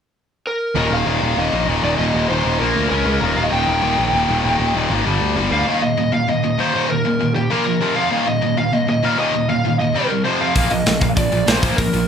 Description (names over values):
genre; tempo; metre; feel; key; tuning
punk rock; 196 BPM; 4/4; straight; Eb major; A4 = 440 Hz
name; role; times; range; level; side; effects
lead guitar through a small cranked amp; melody; 0.5-12.1 s; G4 to G5; -21 LUFS; equal; overdrive
sludgy distorted guitar; riff; 0.7-12.1 s; Eb2 to Db4; -22 LUFS; right 8 dB; overdrive
tight distorted guitar; riff; 0.8-12.1 s; Eb2 to Db4; -20 LUFS; left 8 dB; distortion
fuzz picked electric bass; bass; 0.8-5.6, 10.6-12.0 s; Eb1 to D2; -22 LUFS; equal; overdrive
tight metal drum kit; drums; 10.6-12.0 s; hi-hat, kick drum, snare drum; -18 LUFS; right 1 dB; none
room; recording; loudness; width
moderate large studio reverb, RT60 1.2 s; band playing live in one room; -15 LUFS; side -7 dB against mid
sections
0.8-5.7 A section; 5.7-12.1 B section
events
none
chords
0.0 N.C.; 0.8 Eb5; 2.6 Bb5; 2.9 Db5; 3.2 Eb; 5.1 G5; 5.7 Eb5; 7.5 Bb5; 7.8 F5; 8.1 Eb5; 9.9 C5; 10.3 F5; 10.6 Bb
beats
0.15 0.46 | 0.76 1.07 1.38 1.68 | 1.99 2.30 2.60 2.91 | 3.22 3.52 3.83 4.14 | 4.44 4.75 5.06 5.36 | 5.67 5.98 6.28 6.59 | 6.89 7.20 7.50 7.81 | 8.12 8.42 8.73 9.03 | 9.34 9.64 9.95 10.25 | 10.56 10.86 11.17 11.47 | 11.78